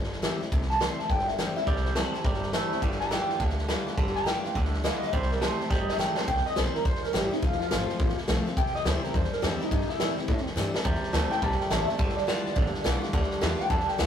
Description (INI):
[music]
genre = rockabilly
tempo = 209 BPM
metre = 4/4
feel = swing 62% on 8ths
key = C major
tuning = A4 = 439 Hz
[part]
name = picked steel-string acoustic guitar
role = accompaniment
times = 0.0-14.1 s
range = F2 to F4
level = -34 LUFS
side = left 4 dB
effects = none
[part]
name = upright bass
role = bass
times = 0.0-14.1 s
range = F1 to Bb2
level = -32 LUFS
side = equal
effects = none
[part]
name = vintage drum kit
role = drums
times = 0.0-14.1 s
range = hi-hat, kick drum, snare drum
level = -29 LUFS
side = equal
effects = none
[part]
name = electric guitar through a small old amp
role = melody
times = 0.7-14.1 s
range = Eb4 to C6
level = -30 LUFS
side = equal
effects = phaser
[part]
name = twangy electric guitar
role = riff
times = 1.7-6.3, 10.8-14.1 s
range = G2 to A3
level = -33 LUFS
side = right 4 dB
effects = spring reverb
[sound]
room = moderate studio reverb, RT60 0.5 s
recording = rough rehearsal-room recording, tube saturation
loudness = -25 LUFS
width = side -9 dB against mid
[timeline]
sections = 0.0-6.3 A section; 6.3-14.1 B section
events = drum fill 5.7-6.3, 10.6; clean electric guitar solo 6.3-14.1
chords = 0.0 C; 2.8 G7; 5.1 C; 7.4 F; 8.6 C; 12.0 G7